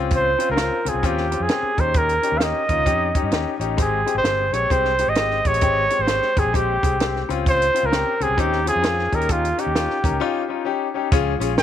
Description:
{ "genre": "uptempo 1960s-style soul", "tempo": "131 BPM", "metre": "4/4", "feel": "swing 63% on 8ths", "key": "Ab major", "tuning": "A4 = 440 Hz", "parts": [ { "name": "clear concert grand piano", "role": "accompaniment", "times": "0.0-11.6 s", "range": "Ab3 to Bb4", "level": "-25 LUFS", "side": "left 11 dB", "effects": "none" }, { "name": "fingered electric bass", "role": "bass", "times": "0.0-11.6 s", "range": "G1 to G2", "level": "-26 LUFS", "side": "right 1 dB", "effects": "none" }, { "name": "warm trumpet", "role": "melody", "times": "0.1-11.6 s", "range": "F4 to G5", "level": "-21 LUFS", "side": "right 2 dB", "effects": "tape echo" }, { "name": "compact cocktail drum kit", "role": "drums", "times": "0.1-11.6 s", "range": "hi-hat, kick drum, snare drum", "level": "-23 LUFS", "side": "right 1 dB", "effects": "none" }, { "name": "percussive tonewheel organ", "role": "sustained chords", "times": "11.1-11.6 s", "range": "F3 to F4", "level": "-30 LUFS", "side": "right 1 dB", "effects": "chorus vibrato, fast rotary speaker" } ], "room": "light reverb", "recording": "1960s-style stereo", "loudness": "-18 LUFS", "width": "side -10 dB against mid", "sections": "0.0-11.1 A section", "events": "break 10.2-11.1", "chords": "0.0 Dbmaj7; 1.7 Eb7; 3.8 Abmaj7; 7.2 Dbmaj7; 9.1 Eb7; 11.1 Db" }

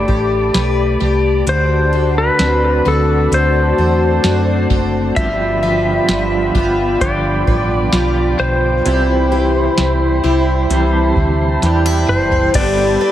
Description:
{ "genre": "dream pop", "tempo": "65 BPM", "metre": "4/4", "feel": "straight", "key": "G major", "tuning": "A4 = 440 Hz", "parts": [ { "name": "clean lap steel guitar", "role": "melody", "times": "0.0-13.1 s", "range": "A4 to E5", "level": "-19 LUFS", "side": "left 1 dB", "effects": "tape echo, shimmer reverb" }, { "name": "warm analog pad", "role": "sustained chords", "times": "0.0-13.1 s", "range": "E4 to B5", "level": "-20 LUFS", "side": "right 1 dB", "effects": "wide subtle chorus, shimmer reverb" }, { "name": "picked plugged-in twelve-string acoustic guitar", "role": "arpeggios", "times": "0.0-13.1 s", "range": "G2 to B4", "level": "-19 LUFS", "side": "left 2 dB", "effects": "wide subtle chorus, tape echo, shimmer reverb" }, { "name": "hollow-body short-scale fingered electric bass", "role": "bass", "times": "0.0-13.0 s", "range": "F#1 to F#2", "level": "-18 LUFS", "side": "equal", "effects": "none" }, { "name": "soft vintage rhythm box", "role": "drums", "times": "0.1-12.8 s", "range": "crash cymbal, hi-hat, kick drum, snare drum, toms", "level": "-20 LUFS", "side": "equal", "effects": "overdrive, tape echo" }, { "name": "clean electric guitar", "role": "accompaniment", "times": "5.2-13.1 s", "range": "G2 to A4", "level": "-22 LUFS", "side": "right 2 dB", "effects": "tremolo, lush chorus, shimmer reverb" }, { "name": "drifting glass-harmonics texture", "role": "texture", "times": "12.9-13.1 s", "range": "D5", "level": "-26 LUFS", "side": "right 2 dB", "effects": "chorus, built-in reverb, tape echo" } ], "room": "wet spring reverb, RT60 2.5 s", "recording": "echo-heavy mix", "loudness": "-12 LUFS", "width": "side -12 dB against mid", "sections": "0.0-12.6 A section", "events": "drum fill 11.6-12.6", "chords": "0.0 Gadd9; 1.5 D7; 5.2 G7; 8.9 Cmaj7; 12.6 Gadd9" }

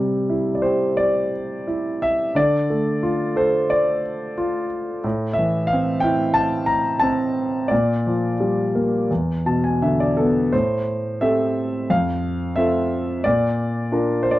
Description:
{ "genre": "classical, lyrical solo piano", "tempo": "88 BPM", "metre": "4/4", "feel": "rubato", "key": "D minor, A minor from 10.5 s", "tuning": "A4 = 440 Hz", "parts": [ { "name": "warm grand piano", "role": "solo", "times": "0.0-14.4 s", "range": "E2 to Bb5", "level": "-18 LUFS", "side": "equal", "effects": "none" } ], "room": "light reverb", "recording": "dark, warm production", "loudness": "-18 LUFS", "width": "side -16 dB against mid", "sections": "0.0-10.5 A section; 10.5-14.4 B section", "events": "grand piano fill 9.1-10.5", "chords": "0.0 Cadd9; 2.4 Dm; 5.0 Am; 7.7 Gm7/Bb; 9.1 E5; 10.5 Am7; 11.9 F; 13.3 Bb" }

